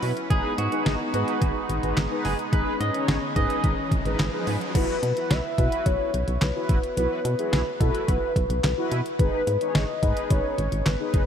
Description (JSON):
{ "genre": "synth-pop", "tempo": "108 BPM", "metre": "4/4", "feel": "straight", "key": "unclear", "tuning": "A4 = 440 Hz", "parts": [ { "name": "soft octave-layered synth lead", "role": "melody", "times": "0.0, 4.8-11.3 s", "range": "A4 to E5", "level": "-28 LUFS", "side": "left 2 dB", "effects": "chorus, phaser, ping-pong delay" }, { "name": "mellow synth brass", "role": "accompaniment", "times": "0.0-11.2 s", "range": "D#4 to C#5", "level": "-29 LUFS", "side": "equal", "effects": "chorus" }, { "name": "sweeping resonant pad", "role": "sustained chords", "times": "0.0-4.7 s", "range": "F#3 to E4", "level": "-32 LUFS", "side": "left 1 dB", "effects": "lush chorus" }, { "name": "solid FM bass", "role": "bass", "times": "0.0-11.2 s", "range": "F#1 to B2", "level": "-27 LUFS", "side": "equal", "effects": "none" }, { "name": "detuned 8-bit digital drum machine", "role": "drums", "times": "0.0-11.3 s", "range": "crash cymbal, handclaps, hi-hat, kick drum, snare drum", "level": "-26 LUFS", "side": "equal", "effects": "overdrive" }, { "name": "clean electric guitar", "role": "second line", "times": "0.3-3.9 s", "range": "F#4 to D#5", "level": "-31 LUFS", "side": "right 2 dB", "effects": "wide subtle chorus, ping-pong delay" }, { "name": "riser", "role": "sound effects", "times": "2.4-4.7 s", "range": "none", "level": "-37 LUFS", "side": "right 1 dB", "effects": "none" } ], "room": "moderate huge ambient reverb, RT60 4.9 s", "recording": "dreamy mix soaked in reverb, faint mains hum", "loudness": "-22 LUFS", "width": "side -8 dB against mid", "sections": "0.0-4.7 A section; 4.7-11.3 B section", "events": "riser 2.4-4.7", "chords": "0.3 G#m; 4.7 Bsus4; 9.2 G#m", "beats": "| 0.30 0.86 1.42 1.97 | 2.53 3.08 3.64 4.19 | 4.75 5.30 5.86 6.42 | 6.97 7.53 8.08 8.64 | 9.19 9.75 10.30 10.86" }